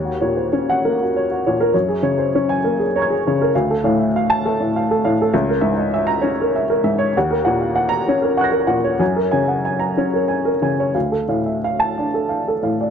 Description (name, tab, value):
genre	neoclassical minimalist piano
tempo	57-68 BPM (dotted quarters)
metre	6/8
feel	rubato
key	unclear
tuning	A4 = 440 Hz
part	warm upright piano	solo	0.0-12.9 s	Db2 to Bb6	-16 LUFS	equal	none
room	light reverb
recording	dark, warm production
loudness	-16 LUFS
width	side -7 dB against mid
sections	0.0-12.9 A section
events	none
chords	0.0 Ebm7; 1.7 Gbadd9; 3.5 Dm; 5.3 Dbm6; 7.2 Ebm7; 9.0 Gbadd9; 10.9 Dm